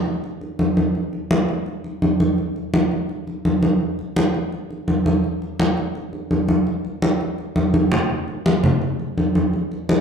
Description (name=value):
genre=latin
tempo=168 BPM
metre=4/4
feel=straight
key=none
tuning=none
part: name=congas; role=percussion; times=0.1-10.0 s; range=none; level=-18 LUFS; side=equal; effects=none
room=wet large studio reverb, RT60 1.2 s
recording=dark, warm production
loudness=-18 LUFS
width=side -6 dB against mid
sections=0.0-8.1 A section; 8.1-10.0 B section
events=drum fill 7.6-8.1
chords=none